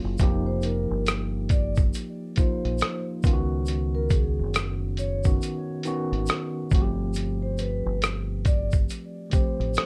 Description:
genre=lo-fi hip hop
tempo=69 BPM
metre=4/4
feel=swing 60% on 16ths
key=unclear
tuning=A4 = 441 Hz
part: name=tine electric piano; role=accompaniment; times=0.0-9.9 s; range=Eb3 to Ab4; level=-33 LUFS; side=equal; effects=none
part: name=deep dub fingered electric bass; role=bass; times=0.0-9.8 s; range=F1 to Db2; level=-31 LUFS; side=equal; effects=none
part: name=dusty soul sampler-style drum kit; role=drums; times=0.2-9.9 s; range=hi-hat, kick drum, rim click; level=-26 LUFS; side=equal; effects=vintage 12-bit sampler grit
part: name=tube shaker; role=percussion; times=0.2-9.9 s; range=none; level=-47 LUFS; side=equal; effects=none
part: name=vibraphone with soft mallets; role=melody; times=0.5-9.9 s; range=Ab4 to D5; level=-37 LUFS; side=equal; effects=tape echo
room=little or no reverb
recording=cassette tape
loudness=-26 LUFS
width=mono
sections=0.0-9.9 A section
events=break 0.0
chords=0.2 F9sus4; 3.2 Db9sus4; 6.7 G9sus4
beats=| 0.20 1.06 1.94 2.80 | 3.67 4.54 5.41 6.28 | 7.15 8.02 8.89 9.76

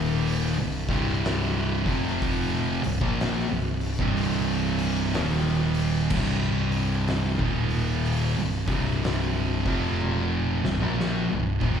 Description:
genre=stoner and doom metal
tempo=62 BPM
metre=4/4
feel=swing 63% on 8ths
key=C minor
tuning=A4 = 440 Hz
part: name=fuzz guitar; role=riff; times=0.0-11.8 s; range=C2 to Bb3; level=-30 LUFS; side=equal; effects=distortion
part: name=thick fuzz guitar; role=riff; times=0.0-11.8 s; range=C2 to Bb3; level=-29 LUFS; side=left 7 dB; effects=distortion, slapback echo
part: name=thick fuzz guitar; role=riff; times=0.0-11.8 s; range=C2 to Bb3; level=-29 LUFS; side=right 8 dB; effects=distortion, slapback echo
part: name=overdriven picked electric bass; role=bass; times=0.0-11.8 s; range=C1 to Bb1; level=-30 LUFS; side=equal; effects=none
part: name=oversized low-tuned drum kit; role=drums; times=0.3-11.8 s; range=crash cymbal, hi-hat, kick drum, snare drum, toms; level=-31 LUFS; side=equal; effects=none
room=light reverb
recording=live gig heard through the venue's PA, club reverb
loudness=-23 LUFS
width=side -8 dB against mid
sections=0.0-11.8 A section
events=drum fill 10.0-11.8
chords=0.0 Eb5; 0.5 C5; 1.7 F5; 2.7 C5; 5.1 Eb5; 6.1 C5; 7.3 Eb5; 8.3 C5; 9.5 F5; 10.5 Cm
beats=0.27 1.25 | 2.22 3.20 4.17 5.15 | 6.12 7.10 8.07 9.05 | 10.02 11.00

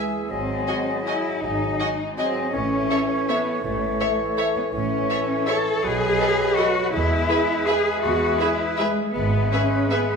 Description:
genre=classical, orchestral ballroom waltz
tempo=163 BPM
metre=3/4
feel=uneven beats, rubato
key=E major from 4.7 s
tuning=A4 = 440 Hz
part: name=dark chamber violin section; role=melody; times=0.0-10.0 s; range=D#5 to G#5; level=-33 LUFS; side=left 3 dB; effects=none
part: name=clear oboe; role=second line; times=0.0-10.2 s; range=B4 to E5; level=-30 LUFS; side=right 1 dB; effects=none
part: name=mellow clarinet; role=second line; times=0.0-10.2 s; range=G#4 to A4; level=-32 LUFS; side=equal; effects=none
part: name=mellow hollow small flute group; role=second line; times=0.0-10.2 s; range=D#5 to G#5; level=-30 LUFS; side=left 4 dB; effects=none
part: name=mellow bassoon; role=accompaniment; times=0.0-10.2 s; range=E3 to G#3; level=-30 LUFS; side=right 2 dB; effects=none
part: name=mellow French horn section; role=sustained chords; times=0.0-10.1 s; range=F#4 to E5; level=-33 LUFS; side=left 1 dB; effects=none
part: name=dark chamber cello section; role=bass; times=0.0-10.2 s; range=G#3 to A4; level=-24 LUFS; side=left 1 dB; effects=none
part: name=rich chamber double bass section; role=bass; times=0.3-9.5 s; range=G#1 to E2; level=-28 LUFS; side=right 2 dB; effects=none
part: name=rich chamber violin section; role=second line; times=0.7-10.0 s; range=B4 to D#5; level=-32 LUFS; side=equal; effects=none
part: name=rich chamber viola section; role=accompaniment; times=0.7-10.0 s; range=F#4 to A4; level=-34 LUFS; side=right 1 dB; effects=none
room=wet recital hall reverb, RT60 1.6 s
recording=minimal, uncompressed stereo recording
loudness=-20 LUFS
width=side -5 dB against mid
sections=0.0-10.2 A section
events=none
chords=0.3 G#7; 2.5 A; 5.8 B7; 6.9 E; 9.2 E/G#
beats=| 0.31 0.68 1.07 | 1.43 1.80 2.18 | 2.54 2.91 3.29 | 3.65 4.01 4.38 | 4.74 5.11 5.49 | 5.84 6.21 6.58 | 6.94 7.31 7.68 | 8.05 8.41 8.80 | 9.16 9.53 9.92

